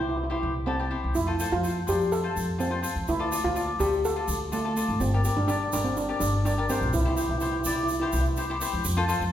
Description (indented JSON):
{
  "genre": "calypso",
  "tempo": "125 BPM",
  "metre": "4/4",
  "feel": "straight",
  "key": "unclear",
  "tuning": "A4 = 441 Hz",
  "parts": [
    { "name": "steel pan", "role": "melody", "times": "0.0-8.3 s", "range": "A3 to A4", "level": "-28 LUFS", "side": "right 1 dB", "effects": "none" },
    { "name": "cavaquinho", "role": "accompaniment", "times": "0.0-9.2 s", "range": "E4 to E5", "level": "-30 LUFS", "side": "left 4 dB", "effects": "none" },
    { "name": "upright bass", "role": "bass", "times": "0.0-9.3 s", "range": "G1 to F2", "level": "-28 LUFS", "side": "equal", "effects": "none" },
    { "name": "tube shaker", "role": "percussion", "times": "1.1-9.3 s", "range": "none", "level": "-37 LUFS", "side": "right 4 dB", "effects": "none" }
  ],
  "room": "wet recital hall reverb, RT60 1.3 s",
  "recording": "recorded in a church or concert hall",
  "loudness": "-24 LUFS",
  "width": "side -11 dB against mid",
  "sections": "0.0-8.8 A section",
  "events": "none",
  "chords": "0.0 C; 1.2 F; 3.1 Dm; 5.0 Gm; 6.9 C"
}